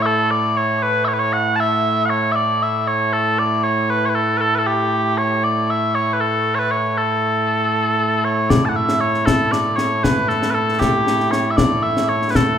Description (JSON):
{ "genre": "scottish traditional, Scottish pipe music", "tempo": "78 BPM (dotted quarters)", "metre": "6/8", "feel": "straight", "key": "A mixolydian", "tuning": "A4 = 440 Hz", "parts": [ { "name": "mellow small bagpipes", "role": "melody", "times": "0.0-12.6 s", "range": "A2 to A5", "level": "-16 LUFS", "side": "equal", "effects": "none" }, { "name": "concert snare drum and concert bass drum", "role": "drums", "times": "8.5-12.5 s", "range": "none", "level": "-19 LUFS", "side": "left 2 dB", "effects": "none" } ], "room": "moderate recital hall reverb, RT60 1.6 s", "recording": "recorded in a church or concert hall", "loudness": "-16 LUFS", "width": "side -8 dB against mid", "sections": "0.0-8.5 A section; 8.5-12.6 A section", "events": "none", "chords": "none", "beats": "0.04 | 0.81 1.58 | 2.35 3.12 | 3.89 4.66 | 5.43 6.20 | 6.96 7.74 | 8.50 9.27 | 10.04 10.81 | 11.58 12.35" }